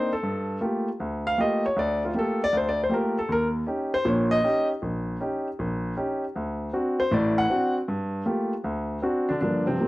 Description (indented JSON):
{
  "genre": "solo jazz",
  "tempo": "157 BPM",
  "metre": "4/4",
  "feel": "swing 66% on 8ths",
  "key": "G minor",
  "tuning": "A4 = 438 Hz",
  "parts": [
    { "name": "warm grand piano", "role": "solo", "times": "0.0-9.9 s", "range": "A1 to F#5", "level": "-23 LUFS", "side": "equal", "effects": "none" }
  ],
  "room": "moderate studio reverb, RT60 0.8 s",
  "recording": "none",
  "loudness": "-23 LUFS",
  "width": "side -18 dB against mid",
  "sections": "0.0-9.4 A section",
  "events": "grand piano solo 0.0-9.4",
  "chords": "0.2 Gm9; 3.3 Eb7; 6.3 D7; 7.9 Gm9; 8.6 D7"
}